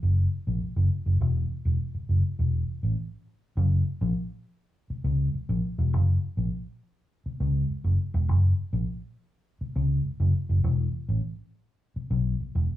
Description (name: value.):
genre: funk.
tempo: 102 BPM.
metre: 4/4.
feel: straight.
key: F# mixolydian.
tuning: A4 = 439 Hz.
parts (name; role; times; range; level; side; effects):
vintage muted fingered electric bass; solo; 0.0-12.7 s; E1 to C#2; -24 LUFS; equal; none.
room: wet studio reverb, RT60 0.6 s.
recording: studio ambience.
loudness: -24 LUFS.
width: side -14 dB against mid.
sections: 0.0-3.6 A section; 3.6-12.8 B section.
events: none.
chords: none.